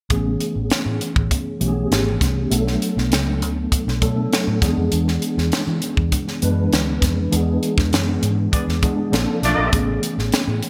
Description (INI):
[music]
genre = polished 1980s jazz-funk pop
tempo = 100 BPM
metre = 4/4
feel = straight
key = unclear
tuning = A4 = 440 Hz
[part]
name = mellow tine electric piano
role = accompaniment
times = 0.1-10.7 s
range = E3 to B4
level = -24 LUFS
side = equal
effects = ensemble chorus
[part]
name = vintage muted fingered electric bass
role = bass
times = 0.1-10.6 s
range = G#1 to E3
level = -25 LUFS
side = equal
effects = none
[part]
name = crisp fusion drum kit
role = drums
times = 0.1-10.7 s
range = hi-hat, kick drum, snare drum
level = -24 LUFS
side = equal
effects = gated reverb
[part]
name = mellow horn section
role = second line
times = 8.5-9.7 s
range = A3 to D5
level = -26 LUFS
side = equal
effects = none
[sound]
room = moderate plate reverb, RT60 2.0 s, studio ambience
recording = bright 1980s-style digital production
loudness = -20 LUFS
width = mono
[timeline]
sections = 0.1-10.7 A section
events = band accent 7.3-9.7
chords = 0.1 Amaj9; 2.5 Bm7; 4.6 E7; 9.1 A#maj9; 9.7 Amaj9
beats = | 0.10 0.71 1.31 1.91 | 2.51 3.12 3.72 4.32 | 4.92 5.52 6.12 6.72 | 7.33 7.93 8.53 9.13 | 9.73 10.33